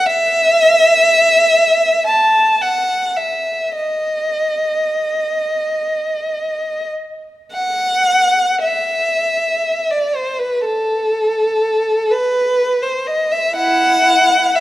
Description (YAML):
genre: classical, free, expressive piece for unaccompanied violin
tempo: 25-43 BPM (dotted quarters)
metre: 6/8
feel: rubato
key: unclear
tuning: A4 = 440 Hz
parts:
  - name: warm violin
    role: solo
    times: 0.0-14.6 s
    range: E4 to A5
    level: -13 LUFS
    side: equal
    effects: none
room: moderate recital hall reverb, RT60 1.9 s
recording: none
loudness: -13 LUFS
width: side -15 dB against mid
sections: 0.0-7.6 A section; 7.6-14.6 B section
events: none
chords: none